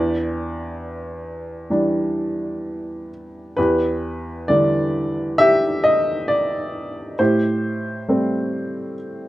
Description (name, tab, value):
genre	classical, lyrical solo piano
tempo	67 BPM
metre	4/4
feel	rubato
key	E minor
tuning	A4 = 439 Hz
part	warm upright piano	solo	0.0-9.3 s	E2 to E5	-19 LUFS	equal	none
room	light reverb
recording	dark, warm production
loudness	-18 LUFS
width	side -15 dB against mid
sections	0.0-3.6 A section; 3.6-9.3 B section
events	none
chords	0.0 Em7; 7.2 Am7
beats	0.79 1.71 2.65 | 3.58 4.49 5.40 6.30 | 7.20 8.09 8.97